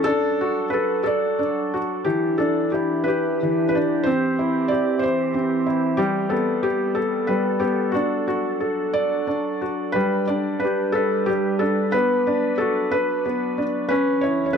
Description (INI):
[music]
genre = children's music, lullaby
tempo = 61 BPM (dotted quarters)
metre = 6/8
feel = rubato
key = G major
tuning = A4 = 440 Hz
[part]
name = felt-muted upright piano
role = melody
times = 0.0-14.6 s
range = E3 to D5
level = -20 LUFS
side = left 1 dB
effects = none
[part]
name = evolving wavetable pad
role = sustained chords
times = 0.0-14.6 s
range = C#2 to B4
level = -28 LUFS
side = right 3 dB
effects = chorus, built-in reverb
[sound]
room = light reverb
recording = close, detailed microphones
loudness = -19 LUFS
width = side -6 dB against mid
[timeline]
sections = 0.0-9.9 A section; 9.9-14.6 B section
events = none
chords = 0.1 D; 2.1 Em7; 4.0 C; 6.0 Gadd9; 7.9 D; 9.9 G; 11.9 Bm; 13.9 A/C#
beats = | 0.05 1.05 | 2.06 3.06 | 4.05 5.02 | 5.99 6.96 | 7.94 8.93 | 9.95 10.95 | 11.94 12.93 | 13.91